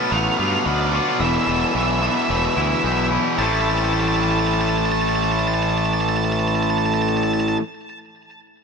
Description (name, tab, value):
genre	post-rock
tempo	110 BPM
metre	4/4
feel	straight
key	A minor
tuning	A4 = 439 Hz
part	octave-fuzz lead guitar	melody	0.0-7.6 s	D5 to A5	-25 LUFS	right 2 dB	distortion, tape echo
part	pedal steel guitar	sustained chords	0.0-7.6 s	E3 to D5	-35 LUFS	left 2 dB	none
part	glockenspiel with soft plastic mallets	arpeggios	0.0-3.7 s	A5 to A6	-34 LUFS	right 6 dB	none
part	twangy electric guitar	arpeggios	0.0-7.6 s	E2 to F4	-30 LUFS	left 4 dB	tape echo
part	distorted electric guitar	riff	0.0-7.6 s	E2 to B3	-23 LUFS	left 14 dB	overdrive
part	tight distorted guitar	riff	0.0-7.6 s	E2 to B3	-23 LUFS	right 15 dB	distortion
part	fuzz fingered electric bass	bass	0.1-7.6 s	E1 to G2	-24 LUFS	equal	overdrive
room	light reverb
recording	none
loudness	-17 LUFS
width	side -5 dB against mid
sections	0.0-3.4 A section; 3.4-7.7 B section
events	none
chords	0.0 Bm7b5; 1.2 Esus4; 3.4 Am7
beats	0.11 0.66 | 1.21 1.75 2.30 2.84 | 3.39 3.93 4.48 5.02 | 5.57 6.11 6.66 7.20